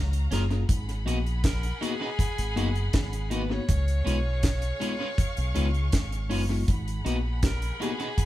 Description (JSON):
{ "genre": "lovers rock reggae", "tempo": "80 BPM", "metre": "4/4", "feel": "straight", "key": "G# dorian", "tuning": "A4 = 442 Hz", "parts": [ { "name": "warm alto saxophone", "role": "melody", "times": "0.0-8.3 s", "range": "G#4 to C#5", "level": "-37 LUFS", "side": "right 1 dB", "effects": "none" }, { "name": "warm studio violin section", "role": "second line", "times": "0.0-8.3 s", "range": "F#4 to C#6", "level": "-38 LUFS", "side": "left 1 dB", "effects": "none" }, { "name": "deep dub fingered electric bass", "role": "bass", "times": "0.0-7.7 s", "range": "F#1 to C#2", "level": "-27 LUFS", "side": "equal", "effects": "none" }, { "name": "deep reggae drum kit", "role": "drums", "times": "0.1-8.3 s", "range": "hi-hat, kick drum, snare drum", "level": "-27 LUFS", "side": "equal", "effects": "tape echo" }, { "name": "mellow tine electric piano", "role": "accompaniment", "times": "0.3-7.9 s", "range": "G#3 to G#4", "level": "-33 LUFS", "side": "left 5 dB", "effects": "none" }, { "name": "electric guitar at the edge of break-up", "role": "stabs", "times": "0.3-8.1 s", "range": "C#4 to B4", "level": "-35 LUFS", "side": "right 2 dB", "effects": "none" }, { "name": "bongos", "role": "percussion", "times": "7.4-8.0 s", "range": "none", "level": "-38 LUFS", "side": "right 2 dB", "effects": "none" } ], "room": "light reverb", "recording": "band playing live in one room", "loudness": "-24 LUFS", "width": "side -14 dB against mid", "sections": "0.0-8.3 A section", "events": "none", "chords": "0.0 F#maj7; 0.7 G#m7; 3.7 C#7; 6.7 G#m7" }